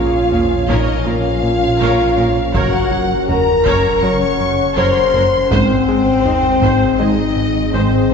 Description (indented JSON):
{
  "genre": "cinematic, hybrid orchestral and electronic film score",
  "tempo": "81 BPM",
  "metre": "4/4",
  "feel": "straight",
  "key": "Bb minor",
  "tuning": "A4 = 440 Hz",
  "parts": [
    { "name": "rich symphonic violin section", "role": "second line", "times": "0.0-8.1 s", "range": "C5 to Db6", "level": "-23 LUFS", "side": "left 4 dB", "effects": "none" },
    { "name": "mellow French horn section", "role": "sustained chords", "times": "0.0-8.1 s", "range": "C4 to Db5", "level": "-16 LUFS", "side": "left 2 dB", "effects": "none" },
    { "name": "shimmering ambient pad", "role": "sustained chords", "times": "0.0-8.1 s", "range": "Db3 to Gb5", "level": "-23 LUFS", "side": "equal", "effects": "chorus, built-in reverb" },
    { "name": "fat analog bass", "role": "riff", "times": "0.0-8.1 s", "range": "Gb2 to Bb3", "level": "-22 LUFS", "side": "left 1 dB", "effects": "none" },
    { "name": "detuned saw bass", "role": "bass", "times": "0.0-8.1 s", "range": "Gb1 to Bb1", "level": "-25 LUFS", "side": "equal", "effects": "none" },
    { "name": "rich symphonic viola section", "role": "accompaniment", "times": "0.3-8.1 s", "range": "Db4 to Db5", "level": "-24 LUFS", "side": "right 2 dB", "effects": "none" },
    { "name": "rich symphonic cello section", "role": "bass", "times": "0.3-8.1 s", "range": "Gb2 to Bb2", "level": "-25 LUFS", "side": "right 3 dB", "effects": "none" },
    { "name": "rich symphonic double bass section", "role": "bass", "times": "0.3-8.1 s", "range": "Gb1 to Bb1", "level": "-26 LUFS", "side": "right 3 dB", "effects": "none" },
    { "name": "solo taiko drums", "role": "drums", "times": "0.3-7.3 s", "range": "none", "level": "-24 LUFS", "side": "right 1 dB", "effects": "none" }
  ],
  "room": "wet concert hall reverb, RT60 1.9 s",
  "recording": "heard from further back in the room, nothing above 7.9 kHz",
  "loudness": "-12 LUFS",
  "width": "side -6 dB against mid",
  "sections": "0.0-8.1 A section",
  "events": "none",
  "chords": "0.0 Bbm; 2.5 Gb; 5.5 Ab"
}